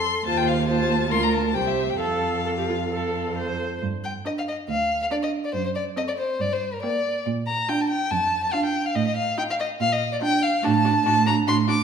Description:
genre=quick classical-period movement for string quartet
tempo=141 BPM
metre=4/4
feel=rubato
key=F major, G minor from 3.8 s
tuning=A4 = 440 Hz
part: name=rich violin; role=melody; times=0.0-11.8 s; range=F4 to C6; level=-28 LUFS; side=left 7 dB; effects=none
part: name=warm violin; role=second line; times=0.0-11.8 s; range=A4 to D6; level=-24 LUFS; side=left 2 dB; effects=none
part: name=rich viola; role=accompaniment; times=0.3-11.8 s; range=Bb3 to C5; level=-28 LUFS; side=right 4 dB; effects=none
part: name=warm cello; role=bass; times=0.3-11.8 s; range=C2 to Bb2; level=-26 LUFS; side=right 6 dB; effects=none
room=wet recital hall reverb, RT60 1.3 s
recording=minimal, uncompressed stereo recording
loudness=-21 LUFS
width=side -7 dB against mid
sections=0.0-3.8 A section; 3.8-11.8 B section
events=none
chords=0.3 F7/Eb; 1.1 Bb/D; 1.5 C; 2.0 F; 3.8 Gm; 5.5 F#dim; 6.4 Gm; 7.3 Bb; 9.0 F7/A; 9.8 Bb; 10.6 D/A

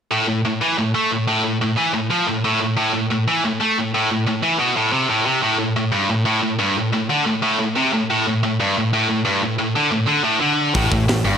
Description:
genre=heavy metal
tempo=180 BPM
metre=4/4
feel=straight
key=A minor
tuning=A4 = 440 Hz
part: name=heavy high-gain guitar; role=riff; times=0.1-11.4 s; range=G2 to A3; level=-17 LUFS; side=equal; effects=distortion
part: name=tight metal drum kit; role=drums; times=10.7-11.2 s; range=hi-hat, kick drum, snare drum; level=-20 LUFS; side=equal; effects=none
part: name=growling picked electric bass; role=bass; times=10.8-11.4 s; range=G1 to A1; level=-21 LUFS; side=equal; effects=overdrive
room=moderate plate reverb, RT60 2.1 s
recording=bright 1980s-style digital production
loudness=-17 LUFS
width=side -7 dB against mid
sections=0.1-5.4 A section; 5.4-11.4 B section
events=none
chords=none

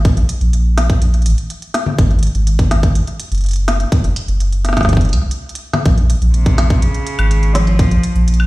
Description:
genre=IDM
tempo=124 BPM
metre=4/4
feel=straight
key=unclear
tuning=A4 = 440 Hz
part: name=warm sub bass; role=bass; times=0.0-8.5 s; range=Gb1 to Db2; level=-13 LUFS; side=equal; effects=none
part: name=electronic kick drum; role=drums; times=0.1-7.9 s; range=none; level=-14 LUFS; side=equal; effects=studio reverb
part: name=organic electronic drum kit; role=drums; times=0.1-8.5 s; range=congas, hi-hat, snare drum, woodblock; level=-22 LUFS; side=left 1 dB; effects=studio reverb, ping-pong delay
part: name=rich cello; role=melody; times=6.3-8.3 s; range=C3 to F3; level=-19 LUFS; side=equal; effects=ping-pong delay
room=little or no reverb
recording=played on a big sound system in a bare room, stone room reverb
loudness=-12 LUFS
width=side -19 dB against mid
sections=0.0-8.5 A section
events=none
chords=0.0 N.C.; 2.0 Gbsus2; 3.9 Gb5; 5.9 Bbm7

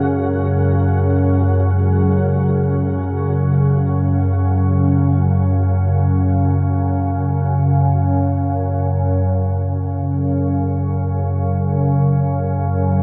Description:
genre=dark ambient drone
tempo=free time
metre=none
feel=none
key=unclear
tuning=A4 = 443 Hz
part: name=dark analog pad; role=sustained chords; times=0.0-9.1 s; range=E4 to G#4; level=-32 LUFS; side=equal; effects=chorus, phaser, shimmer reverb
part: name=organ-like drone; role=drone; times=0.0-13.0 s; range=F#2 to C#3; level=-17 LUFS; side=equal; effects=ensemble chorus, built-in reverb
part: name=flickering grainy texture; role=texture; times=0.0-9.2 s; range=F#4 to F#5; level=-36 LUFS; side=equal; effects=built-in reverb, shimmer reverb
room=wet huge ambient reverb, RT60 8.5 s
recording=dark, warm production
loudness=-17 LUFS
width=mono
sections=0.0-9.1 A section; 9.1-13.0 B section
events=fade-out on synth texture 0.0-9.1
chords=0.0 F#sus2; 9.1 F#5

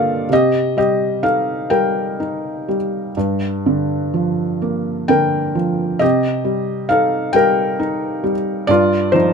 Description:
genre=classical, lyrical solo piano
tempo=41-45 BPM (dotted quarters)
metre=6/8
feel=rubato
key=unclear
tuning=A4 = 440 Hz
part: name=felt-muted upright piano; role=solo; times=0.0-9.3 s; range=G2 to G5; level=-15 LUFS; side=equal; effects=none
room=light reverb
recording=close, detailed microphones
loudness=-15 LUFS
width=side -5 dB against mid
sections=0.0-9.3 A section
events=none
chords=0.3 Cm7; 3.2 Gm7; 6.0 Cm7; 8.7 G7(no3)

